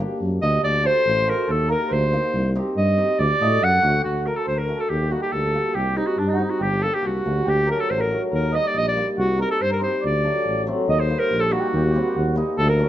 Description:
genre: klezmer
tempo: 141 BPM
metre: 2/4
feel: straight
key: unclear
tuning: A4 = 440 Hz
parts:
  - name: cimbalom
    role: accompaniment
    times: 0.0-12.9 s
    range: F#3 to G4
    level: -26 LUFS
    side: left 1 dB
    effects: none
  - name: mellow tuba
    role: bass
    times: 0.0-12.8 s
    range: G1 to A2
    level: -24 LUFS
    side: equal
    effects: none
  - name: clear clarinet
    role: melody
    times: 0.4-12.9 s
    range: D4 to F#5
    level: -22 LUFS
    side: equal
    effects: none
  - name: mellow accordion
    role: second line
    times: 0.4-12.9 s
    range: D4 to F#5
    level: -27 LUFS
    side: right 4 dB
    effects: none
room: moderate studio reverb, RT60 0.6 s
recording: nothing above 8.0 kHz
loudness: -19 LUFS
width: side -12 dB against mid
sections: 0.0-4.1 A section; 4.1-10.9 B section; 10.9-12.9 C section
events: clarinet solo 0.0-4.1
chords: 0.0 Gm; 0.6 D; 1.5 Eb; 2.3 Cm; 3.2 D; 4.9 Eb; 5.8 Cm; 6.6 Gm; 7.5 D; 8.3 Eb; 9.2 Cm; 10.0 D; 10.9 Eb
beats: 0.22 | 0.64 1.07 | 1.50 1.92 | 2.35 2.77 | 3.20 3.62 | 4.05 4.48 | 4.91 5.33 | 5.76 6.19 | 6.62 7.04 | 7.47 7.90 | 8.33 8.76 | 9.18 9.61 | 10.04 10.46 | 10.88 11.31 | 11.73 12.16 | 12.58

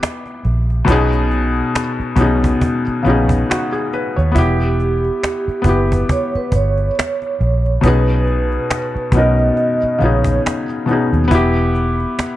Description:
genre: lo-fi hip hop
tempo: 69 BPM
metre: 4/4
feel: swing 57% on 16ths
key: B major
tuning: A4 = 441 Hz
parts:
  - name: felt-muted upright piano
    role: accompaniment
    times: 0.0-12.4 s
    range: B2 to C#5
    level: -17 LUFS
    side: left 2 dB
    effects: cassette tape, low-pass filter
  - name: cajon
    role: drums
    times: 0.0-12.4 s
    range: none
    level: -21 LUFS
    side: right 1 dB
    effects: vintage 12-bit sampler grit
  - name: vintage muted fingered electric bass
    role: bass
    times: 0.5-12.0 s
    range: E1 to D#2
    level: -16 LUFS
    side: right 1 dB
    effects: none
  - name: vibraphone with soft mallets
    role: melody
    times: 4.4-10.4 s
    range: G4 to D#5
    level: -20 LUFS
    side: right 2 dB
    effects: low-pass filter
room: moderate spring reverb, RT60 2.5 s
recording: dark, warm production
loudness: -14 LUFS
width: side -14 dB against mid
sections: 0.0-12.4 A section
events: none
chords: 0.0 Em; 0.9 B69; 4.4 Em; 7.8 B69; 11.3 Em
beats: 0.01 | 0.88 1.75 2.62 3.49 | 4.36 5.23 6.10 6.97 | 7.84 8.71 9.57 10.45 | 11.31 12.18

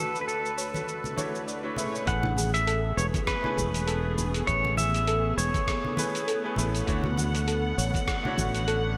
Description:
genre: sunset chillout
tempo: 100 BPM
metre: 4/4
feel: swing 56% on 16ths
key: A major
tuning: A4 = 440 Hz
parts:
  - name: pedal steel guitar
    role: melody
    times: 0.0-6.5 s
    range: A4 to F#5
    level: -33 LUFS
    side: equal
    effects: digital delay, shimmer reverb
  - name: warm chamber string section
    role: sustained chords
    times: 0.0-9.0 s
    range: D2 to F#5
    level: -36 LUFS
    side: equal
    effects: shimmer reverb
  - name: soft round pluck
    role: arpeggios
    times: 0.0-8.8 s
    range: F#4 to E5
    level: -38 LUFS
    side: equal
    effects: analog chorus, delay, shimmer reverb
  - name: dusty soul sampler-style drum kit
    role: drums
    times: 0.2-8.8 s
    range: hi-hat, rim click, shaker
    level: -37 LUFS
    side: equal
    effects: gated reverb
  - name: congas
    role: percussion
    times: 0.7-8.5 s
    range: none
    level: -38 LUFS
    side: equal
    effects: none
  - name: clear grand piano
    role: accompaniment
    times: 1.2-9.0 s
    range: A3 to C#5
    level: -38 LUFS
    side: equal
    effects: delay, shimmer reverb
  - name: sustaining fretless electric bass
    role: bass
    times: 2.1-9.0 s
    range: E1 to D2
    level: -31 LUFS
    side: equal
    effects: none
  - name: electronic kick drum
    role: drums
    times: 2.1-8.5 s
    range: none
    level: -35 LUFS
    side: equal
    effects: none
room: moderate lush hall reverb, RT60 1.8 s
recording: bright 1980s-style digital production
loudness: -28 LUFS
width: mono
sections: 0.0-2.1 A section; 2.1-9.0 B section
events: filter sweep on grand piano 0.0-2.1; filter sweep on string section 0.0-2.1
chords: 0.0 Dmaj7; 1.8 Amaj9; 6.9 Dmaj7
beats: 0.28 0.88 1.48 | 2.08 2.67 3.27 3.88 | 4.47 5.08 5.67 6.28 | 6.88 7.47 8.07 8.68

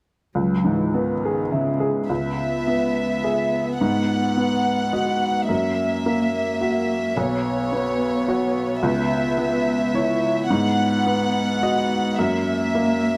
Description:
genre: neoclassical piano and strings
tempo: 107 BPM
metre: 3/4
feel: rubato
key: unclear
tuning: A4 = 441 Hz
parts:
  - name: warm cello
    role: second line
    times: 0.3-13.2 s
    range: C#3 to B3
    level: -28 LUFS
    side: equal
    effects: none
  - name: bright upright piano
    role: accompaniment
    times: 0.4-13.2 s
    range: B1 to E5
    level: -25 LUFS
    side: equal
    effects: none
  - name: warm chamber violin section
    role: melody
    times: 2.1-13.2 s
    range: C#5 to F#5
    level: -27 LUFS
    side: equal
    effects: none
room: light reverb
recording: close, detailed microphones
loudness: -22 LUFS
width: mono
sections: 0.4-2.1 A section; 2.1-13.2 B section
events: none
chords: 0.4 C#m7; 3.8 G#m7; 5.5 F#7; 7.2 Bsus2; 8.8 C#m7; 10.5 G#m7; 12.2 F#7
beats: | 0.35 0.94 1.51 | 2.10 2.67 3.25 | 3.81 4.38 4.94 | 5.50 6.06 6.62 | 7.17 7.73 8.29 | 8.84 9.39 9.94 | 10.50 11.06 11.62 | 12.18 12.75

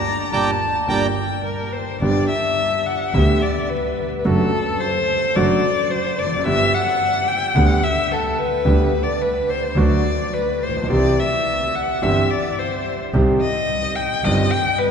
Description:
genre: tango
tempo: 108 BPM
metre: 4/4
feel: rubato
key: G major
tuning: A4 = 439 Hz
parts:
  - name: rich violin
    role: second line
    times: 0.0-14.9 s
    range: A4 to Bb5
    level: -20 LUFS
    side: left 3 dB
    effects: none
  - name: bandoneon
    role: melody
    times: 0.3-1.1 s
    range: D5 to Bb5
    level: -26 LUFS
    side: right 3 dB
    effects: none
  - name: warm concert grand piano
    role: accompaniment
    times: 0.3-14.5 s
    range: G1 to G4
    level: -22 LUFS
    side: right 1 dB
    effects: none
  - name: warm double bass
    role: bass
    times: 0.3-14.5 s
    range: F1 to D2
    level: -23 LUFS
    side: right 2 dB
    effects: none
room: wet cathedral reverb, RT60 5.6 s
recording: recorded in a church or concert hall, nothing above 10.6 kHz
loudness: -17 LUFS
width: side -6 dB against mid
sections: 0.0-2.0 A section; 2.0-14.9 B section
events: band accent 0.0-2.0; violin solo 2.0-14.9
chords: 0.0 Gm; 2.0 G; 4.3 D/F#; 6.5 G; 8.7 G/D; 9.8 D; 10.9 C; 13.1 Cm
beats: 0.32 0.89 1.45 | 2.02 2.58 3.15 3.71 | 4.26 4.81 5.36 5.91 | 6.45 7.00 7.55 8.10 | 8.65 9.20 9.76 10.33 | 10.90 11.46 12.03 12.58 | 13.14 13.70 14.25 14.80

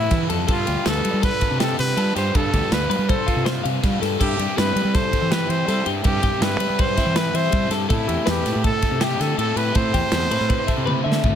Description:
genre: math rock and midwest emo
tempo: 162 BPM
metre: 5/4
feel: straight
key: C major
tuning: A4 = 441 Hz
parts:
  - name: breathy trumpet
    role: melody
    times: 0.0-11.2 s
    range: E4 to C5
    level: -25 LUFS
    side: right 1 dB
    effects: slapback echo
  - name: twelve-string electric guitar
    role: arpeggios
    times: 0.0-11.4 s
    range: E4 to F5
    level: -27 LUFS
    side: left 8 dB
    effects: wide subtle chorus
  - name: crunchy overdriven guitar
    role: riff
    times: 0.0-11.4 s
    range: E3 to B4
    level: -27 LUFS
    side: right 1 dB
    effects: none
  - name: fuzz fingered electric bass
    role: bass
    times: 0.0-11.4 s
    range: D2 to G3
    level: -24 LUFS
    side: equal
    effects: overdrive
  - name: modern studio drum kit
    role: drums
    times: 0.1-11.3 s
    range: crash cymbal, kick drum, ride cymbal, snare drum, toms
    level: -23 LUFS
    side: equal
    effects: none
room: light reverb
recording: none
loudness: -18 LUFS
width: side -9 dB against mid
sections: 0.0-11.4 A section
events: drum fill 10.9-11.4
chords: 0.5 G9sus4; 4.2 Cmaj7/G; 7.9 Am9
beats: 0.12 | 0.49 0.86 1.23 1.60 1.97 | 2.34 2.71 3.08 3.46 3.83 | 4.20 4.57 4.94 5.31 5.68 | 6.05 6.42 6.79 7.16 7.53 | 7.90 8.27 8.64 9.01 9.38 | 9.75 10.12 10.50 10.87 11.24

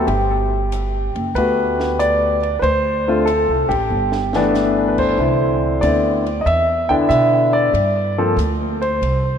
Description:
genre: jazz piano trio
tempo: 94 BPM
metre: 4/4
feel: swing 68% on 8ths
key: G major, C major from 5.2 s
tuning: A4 = 441 Hz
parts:
  - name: warm concert grand piano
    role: melody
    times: 0.0-9.4 s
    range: D3 to G5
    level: -16 LUFS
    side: left 1 dB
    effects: tape echo
  - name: upright bass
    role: bass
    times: 0.0-9.4 s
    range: F#1 to B2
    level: -22 LUFS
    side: right 1 dB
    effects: none
  - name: compact cocktail drum kit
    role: drums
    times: 0.1-9.2 s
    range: crash cymbal, hi-hat, kick drum, ride cymbal, snare drum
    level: -34 LUFS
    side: right 1 dB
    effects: none
room: wet lush hall reverb, RT60 2.5 s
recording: dreamy mix soaked in reverb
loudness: -15 LUFS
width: side -8 dB against mid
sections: 0.0-5.2 A section; 5.2-9.4 B section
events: band accent 3.6-3.9; drum fill 3.9-4.6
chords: 0.1 Gmaj9; 2.6 D7(no3); 3.9 G69; 5.2 Cmaj9; 7.7 Gsus4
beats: | 0.08 0.72 1.36 2.00 | 2.63 3.27 3.91 4.55 | 5.19 5.83 6.47 7.11 | 7.75 8.38 9.02

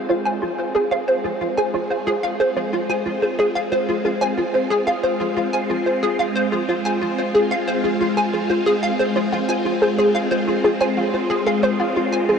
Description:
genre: ambient, sequencer-driven space music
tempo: 91 BPM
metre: 4/4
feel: straight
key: F minor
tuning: A4 = 440 Hz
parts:
  - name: phased string machine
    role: sustained chords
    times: 0.0-12.4 s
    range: Ab3 to F4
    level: -23 LUFS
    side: equal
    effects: ensemble chorus, phaser
  - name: warbly dusty pluck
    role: arpeggios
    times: 0.1-12.4 s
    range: F4 to F5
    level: -25 LUFS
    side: right 1 dB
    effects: chorus, auto-pan, ping-pong delay
  - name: hollow square pluck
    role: riff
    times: 0.1-12.3 s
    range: F4 to Ab5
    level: -20 LUFS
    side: equal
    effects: ensemble chorus, ping-pong delay
room: wet huge ambient reverb, RT60 8.0 s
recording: dark, warm production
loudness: -18 LUFS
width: side -6 dB against mid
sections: 0.0-12.4 A section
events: fade-in on string machine 0.0-12.4; filter sweep on synth arpeggio sound 0.0-12.4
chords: 0.0 Fm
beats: 0.09 0.75 | 1.41 2.07 2.73 3.39 | 4.05 4.71 5.37 6.03 | 6.69 7.34 8.00 8.66 | 9.32 9.98 10.64 11.30 | 11.96

